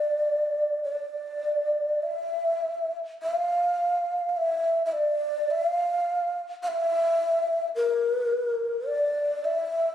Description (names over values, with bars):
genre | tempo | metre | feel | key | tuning
japanese traditional, Japanese chamber music | 53 BPM | 2/4 | uneven beats, rubato | D hirajoshi | A4 = 441 Hz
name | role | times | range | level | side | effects
breathy mellow long shakuhachi | solo | 0.0-9.9 s | Bb4 to F5 | -24 LUFS | equal | none
room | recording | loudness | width
moderate recital hall reverb, RT60 1.5 s | recorded on a phone in the room, studio reverb | -24 LUFS | side -10 dB against mid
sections
0.0-2.0 A section; 2.0-9.9 B section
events
none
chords
none